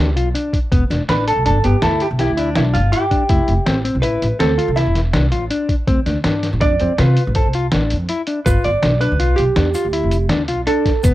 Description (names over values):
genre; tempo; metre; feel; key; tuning
progressive instrumental, band music in an uneven meter; 163 BPM; 7/4; straight; unclear; A4 = 442 Hz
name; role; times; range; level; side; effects
vintage hollow-body jazz guitar; accompaniment; 0.0-11.1 s; D4 to E5; -19 LUFS; right 2 dB; cassette tape
mellow electric guitar; arpeggios; 0.0-11.1 s; B3 to A4; -21 LUFS; left 3 dB; cassette tape
upright bass; bass; 0.0-11.1 s; E1 to C3; -18 LUFS; equal; none
lo-fi sampler-style drum kit; drums; 0.2-11.1 s; hi-hat, kick drum, snare drum; -20 LUFS; equal; cassette tape
egg shaker; percussion; 8.5-11.1 s; none; -34 LUFS; right 4 dB; none
room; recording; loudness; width
light reverb; home recording on cassette; -14 LUFS; side -15 dB against mid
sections
0.0-11.1 A section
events
hollow-body jazz guitar solo 0.0-11.1; break 8.1-8.5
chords
0.0 G7; 0.7 Em7; 3.3 Fmaj7; 5.9 Dm7; 8.5 G7